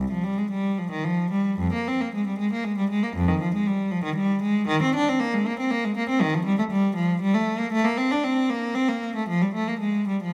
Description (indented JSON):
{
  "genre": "classical, baroque-style suite movement for unaccompanied cello",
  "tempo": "117 BPM",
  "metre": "3/4",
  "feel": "uneven beats, rubato",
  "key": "unclear",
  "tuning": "A4 = 440 Hz",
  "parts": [
    { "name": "rich cello", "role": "solo", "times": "0.0-10.3 s", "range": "C2 to D4", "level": "-24 LUFS", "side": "equal", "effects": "none" }
  ],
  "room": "moderate recital hall reverb, RT60 1.7 s",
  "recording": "none",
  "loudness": "-24 LUFS",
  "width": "mono",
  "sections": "0.0-10.3 A section",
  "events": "none",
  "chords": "none"
}